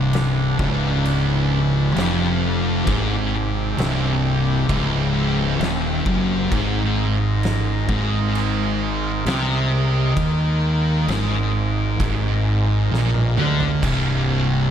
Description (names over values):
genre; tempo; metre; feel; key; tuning
stoner and doom metal; 66 BPM; 4/4; straight; C minor; A4 = 440 Hz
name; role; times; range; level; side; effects
overtone-sweeping drone; sustained chords; 0.0-14.7 s; C3 to Eb5; -30 LUFS; equal; chorus, built-in reverb, phaser
thick fuzz guitar; riff; 0.0-14.7 s; C2 to Eb3; -22 LUFS; left 6 dB; distortion
thick fuzz guitar; riff; 0.0-14.7 s; C2 to Eb3; -22 LUFS; right 7 dB; distortion
fuzz fingered electric bass; bass; 0.0-14.7 s; C1 to Eb2; -25 LUFS; equal; overdrive
oversized low-tuned drum kit; drums; 0.1-14.0 s; crash cymbal, kick drum, snare drum, toms; -28 LUFS; equal; none
room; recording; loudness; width
small room ambience; none; -18 LUFS; side -9 dB against mid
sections
0.0-14.7 A section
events
drum fill 12.9-13.8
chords
0.0 Cm; 6.5 Ab5; 13.8 C5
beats
0.14 1.05 1.96 | 2.87 3.78 4.70 5.61 | 6.52 7.43 8.35 9.26 | 10.17 11.09 12.00 12.92 | 13.83